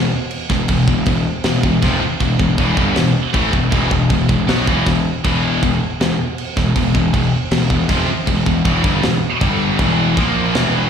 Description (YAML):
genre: heavy metal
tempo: 158 BPM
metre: 4/4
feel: straight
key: E minor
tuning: A4 = 440 Hz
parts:
  - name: high-gain distorted guitar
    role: riff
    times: 0.0-10.9 s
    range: E2 to B3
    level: -22 LUFS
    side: left 11 dB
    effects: distortion
  - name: high-gain distorted guitar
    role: riff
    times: 0.0-10.9 s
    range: E2 to B3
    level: -23 LUFS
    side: equal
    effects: distortion
  - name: scooped high-gain guitar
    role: riff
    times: 0.0-10.9 s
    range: E2 to B3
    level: -22 LUFS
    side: right 9 dB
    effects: distortion, slapback echo
  - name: fuzz picked electric bass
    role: bass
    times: 0.0-10.9 s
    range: E1 to B1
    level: -19 LUFS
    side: equal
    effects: overdrive
  - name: tight metal drum kit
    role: drums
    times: 0.3-10.6 s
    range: crash cymbal, kick drum, snare drum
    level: -20 LUFS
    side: equal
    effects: none
room: studio ambience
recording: live gig heard through the venue's PA, recital hall reverb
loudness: -14 LUFS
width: side -7 dB against mid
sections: 0.0-10.9 A section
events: half time 0.0-10.9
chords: 0.0 Em; 9.4 G5; 9.8 E5; 10.2 A#5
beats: 0.31 | 0.69 1.07 1.45 1.83 | 2.21 2.59 2.96 3.34 | 3.72 4.10 4.48 4.86 | 5.24 5.62 6.00 6.38 | 6.75 7.13 7.51 7.89 | 8.27 8.65 9.03 9.41 | 9.79 10.16 10.54